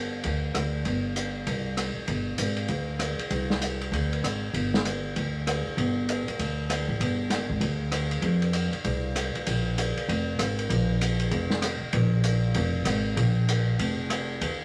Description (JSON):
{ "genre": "modal jazz", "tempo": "195 BPM", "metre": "4/4", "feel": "swing 62% on 8ths", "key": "unclear", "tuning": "A4 = 441 Hz", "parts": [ { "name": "upright bass", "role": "bass", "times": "0.0-14.6 s", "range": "F1 to F2", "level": "-29 LUFS", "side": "equal", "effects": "none" }, { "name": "open jazz drum kit", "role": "drums", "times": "0.2-14.5 s", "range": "hi-hat, kick drum, ride cymbal, rim click, snare drum", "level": "-32 LUFS", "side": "equal", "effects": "none" } ], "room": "moderate club reverb, RT60 0.6 s", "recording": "none", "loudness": "-27 LUFS", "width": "mono", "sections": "0.0-9.5 A section; 9.5-14.6 B section", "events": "none", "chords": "none", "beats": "0.24 0.55 | 0.86 1.17 1.47 1.78 | 2.09 2.40 2.70 3.01 | 3.32 3.62 3.93 4.24 | 4.55 4.85 5.16 5.47 | 5.78 6.08 6.39 6.70 | 7.01 7.32 7.62 7.93 | 8.24 8.55 8.86 9.17 | 9.47 9.78 10.09 10.40 | 10.71 11.02 11.33 11.63 | 11.94 12.25 12.56 12.87 | 13.18 13.49 13.80 14.11 | 14.41" }